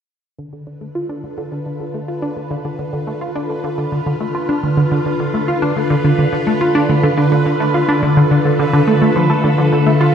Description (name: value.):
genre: ambient, sequencer-driven space music.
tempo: 106 BPM.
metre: 4/4.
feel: straight.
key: D dorian.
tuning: A4 = 440 Hz.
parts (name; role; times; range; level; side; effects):
phased string machine; sustained chords; 0.4-10.1 s; D3 to A4; -18 LUFS; equal; ensemble chorus, phaser.
tight sequenced synth; riff; 0.4-10.1 s; D3 to F4; -17 LUFS; equal; chorus, phaser, tape echo.
bubbling stepped-filter texture; texture; 1.3-10.1 s; B4; -25 LUFS; right 2 dB; chorus, built-in reverb.
room: wet concert hall reverb, RT60 2.0 s.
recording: dark, warm production.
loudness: -14 LUFS.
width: side -8 dB against mid.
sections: 0.4-10.1 A section.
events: fade-in on synth arpeggio sound 0.4-10.1; fade-in on string machine 0.4-10.1; fade-in on synth texture 0.4-10.1.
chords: 0.4 Dm.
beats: | 0.39 0.95 1.52 2.08 | 2.65 3.22 3.78 4.35 | 4.92 5.48 6.05 6.61 | 7.18 7.75 8.31 8.88 | 9.44 10.01.